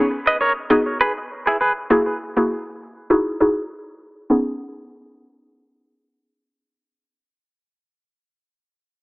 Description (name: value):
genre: afrobeats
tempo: 100 BPM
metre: 4/4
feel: swing 55% on 16ths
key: B major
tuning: A4 = 441 Hz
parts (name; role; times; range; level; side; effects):
- mallet-like synth pluck; accompaniment; 0.0-8.2 s; A#3 to G#4; -18 LUFS; equal; chorus
- direct-recorded clean electric guitar; riff; 0.3-1.7 s; E4 to D#5; -20 LUFS; right 1 dB; harmonic tremolo, analog delay
room: moderate spring reverb, RT60 2.5 s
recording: echo-heavy mix, low-pass filter, AM radio sound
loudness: -17 LUFS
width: side -25 dB against mid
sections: 0.0-4.3 A section; 4.3-6.7 B section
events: filter sweep 0.0-4.3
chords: 0.0 B69; 0.7 G#m7; 1.9 F#9; 3.1 Emaj9; 4.3 B69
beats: 0.10 0.70 1.30 | 1.90 2.50 3.10 3.70 | 4.30 4.90 5.50 6.10